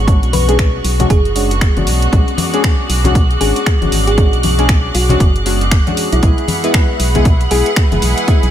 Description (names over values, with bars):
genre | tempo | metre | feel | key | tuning
deep house | 117 BPM | 4/4 | swing 60% on 16ths | B dorian | A4 = 440 Hz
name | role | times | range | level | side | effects
hollow soft pad | sustained chords | 0.0-8.5 s | G#4 to D6 | -24 LUFS | left 2 dB | ensemble chorus, sidechain pumping
deep mellow chord stab | stabs | 0.0-8.5 s | G#3 to B4 | -20 LUFS | left 1 dB | chorus, sidechain pumping, dub echo
organ-like FM bass | bass | 0.0-8.5 s | F#1 to B1 | -16 LUFS | equal | sidechain pumping
clear symphonic string section | texture | 0.0-8.5 s | B3 to G#5 | -25 LUFS | right 3 dB | sidechain pumping
rich chamber violin section | texture | 0.0-8.5 s | F#6 | -26 LUFS | right 2 dB | sidechain pumping
deep house drum kit | drums | 0.1-8.5 s | finger snaps, hi-hat | -21 LUFS | equal | overdrive, studio reverb
electronic kick drum | drums | 0.1-8.4 s | none | -12 LUFS | equal | overdrive, studio reverb
thumb-piano-like synth pluck | melody | 0.3-7.7 s | E4 to B4 | -21 LUFS | left 1 dB | chorus, tape echo
congas | percussion | 0.3-8.0 s | none | -20 LUFS | left 3 dB | sidechain pumping on perc
room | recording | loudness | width
small room ambience | none | -11 LUFS | side -10 dB against mid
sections
0.0-8.5 A section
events
none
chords
0.0 Bm69; 6.2 E